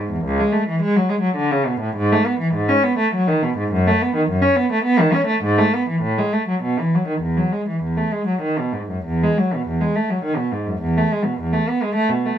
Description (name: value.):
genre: classical, baroque-style suite movement for unaccompanied cello.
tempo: 95-108 BPM.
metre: 3/4.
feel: rubato.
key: E major.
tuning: A4 = 440 Hz.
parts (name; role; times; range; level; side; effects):
warm cello; solo; 0.0-12.4 s; C#2 to C#4; -17 LUFS; equal; none.
room: light reverb.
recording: minimal, uncompressed stereo recording.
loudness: -17 LUFS.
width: side -9 dB against mid.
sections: 0.0-9.1 A section; 9.1-12.4 B section.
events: none.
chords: none.